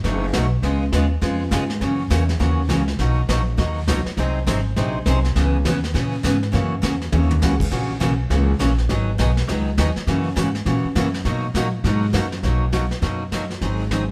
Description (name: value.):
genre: country, western swing.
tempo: 203 BPM.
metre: 4/4.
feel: swing 62% on 8ths.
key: B major.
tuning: A4 = 440 Hz.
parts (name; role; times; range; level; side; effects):
picked steel-string acoustic guitar; accompaniment; 0.0-14.0 s; B2 to B#4; -25 LUFS; equal; none.
upright bass; bass; 0.0-14.1 s; F#1 to B2; -23 LUFS; equal; none.
vintage brush drum kit; drums; 0.0-14.1 s; brushed snare drum, crash cymbal, hi-hat, kick drum, snare drum, toms; -30 LUFS; equal; none.
room: light reverb.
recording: band playing live in one room.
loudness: -21 LUFS.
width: mono.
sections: 0.0-12.4 A section; 12.4-14.1 B section.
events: drum fill 7.1.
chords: 0.0 B7; 0.6 C#7; 1.8 F#7; 3.0 Bmaj9; 4.2 G#7; 5.4 C#m9; 6.5 F#7; 8.9 G#m7; 10.1 F#9; 11.3 Bmaj7.